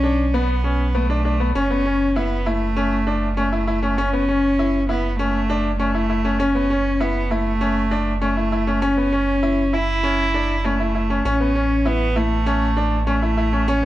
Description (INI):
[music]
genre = piano and strings electronica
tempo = 99 BPM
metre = 4/4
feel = straight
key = F# minor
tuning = A4 = 441 Hz
[part]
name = rich cello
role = melody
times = 0.0-13.8 s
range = A3 to E4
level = -21 LUFS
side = equal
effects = none
[part]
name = bright upright piano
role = riff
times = 0.0-13.8 s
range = B3 to E4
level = -23 LUFS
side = left 2 dB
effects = none
[part]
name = warm sub bass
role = bass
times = 0.0-13.8 s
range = F#1 to B1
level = -23 LUFS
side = right 1 dB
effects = tube saturation
[sound]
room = light reverb, small room ambience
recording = none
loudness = -18 LUFS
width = side -14 dB against mid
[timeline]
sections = 0.0-13.8 A section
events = none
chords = 0.0 Bm7; 1.6 F#m7; 11.2 A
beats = 0.34 0.95 | 1.55 2.16 2.77 3.37 | 3.98 4.58 5.19 5.80 | 6.40 7.01 7.61 8.22 | 8.83 9.43 10.04 10.64 | 11.25 11.86 12.46 13.07 | 13.68